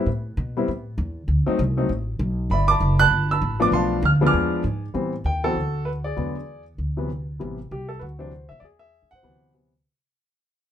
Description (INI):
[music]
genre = jazz piano trio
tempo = 196 BPM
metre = 4/4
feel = swing 62% on 8ths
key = unclear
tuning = A4 = 439 Hz
[part]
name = warm grand piano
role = melody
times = 0.0-9.7 s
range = C3 to F#6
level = -22 LUFS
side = equal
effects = none
[part]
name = upright bass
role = bass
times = 0.0-9.8 s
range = F#1 to B2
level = -24 LUFS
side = equal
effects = none
[sound]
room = light reverb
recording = minimal, uncompressed stereo recording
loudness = -20 LUFS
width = side -10 dB against mid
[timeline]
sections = 0.0-5.0 A section; 5.0-9.9 B section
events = fade-out 5.0-9.9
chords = 0.1 Asus2; 1.3 D7(no3); 2.5 G69; 3.7 Bm7b5; 4.3 E7b9; 5.0 Am7; 5.6 D; 6.2 E7; 6.8 N.C.; 7.4 Am7; 8.0 D13; 8.6 E; 9.2 D13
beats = | 0.07 0.38 0.68 0.99 | 1.29 1.60 1.90 2.21 | 2.51 2.82 3.12 3.43 | 3.73 4.04 4.34 4.65 | 4.96 5.26 5.57 5.87 | 6.18 6.49 6.79 7.10 | 7.40 7.71 8.02 8.32 | 8.63 8.94 9.24 9.55